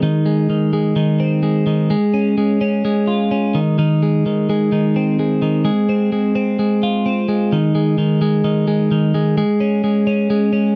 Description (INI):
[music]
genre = indie pop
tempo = 128 BPM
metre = 4/4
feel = straight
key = Ab major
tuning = A4 = 440 Hz
[part]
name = twelve-string electric guitar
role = solo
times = 0.0-10.8 s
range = Eb3 to F4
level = -17 LUFS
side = equal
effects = none
[sound]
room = moderate studio reverb, RT60 0.5 s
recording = dry, close 1970s-style studio recording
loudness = -17 LUFS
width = mono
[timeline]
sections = 0.0-7.5 A section; 7.5-10.8 B section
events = none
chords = 0.0 Ab; 1.9 Db; 3.5 Ab; 5.6 Fm; 7.5 Ab5; 9.4 Db5